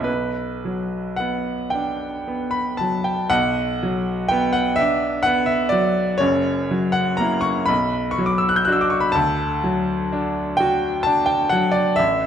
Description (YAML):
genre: classical, romantic nocturne for solo piano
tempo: 35-43 BPM (dotted quarters)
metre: 6/8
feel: rubato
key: B minor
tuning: A4 = 440 Hz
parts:
  - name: bright baby grand piano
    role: solo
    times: 0.0-12.3 s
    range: F#1 to G6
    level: -18 LUFS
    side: equal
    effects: none
room: moderate recital hall reverb, RT60 1.4 s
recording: dark, warm production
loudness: -18 LUFS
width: side -8 dB against mid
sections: 0.0-3.3 A section; 3.3-12.3 A section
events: none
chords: 0.1 Bm; 6.2 F#7; 7.7 Bm; 9.1 D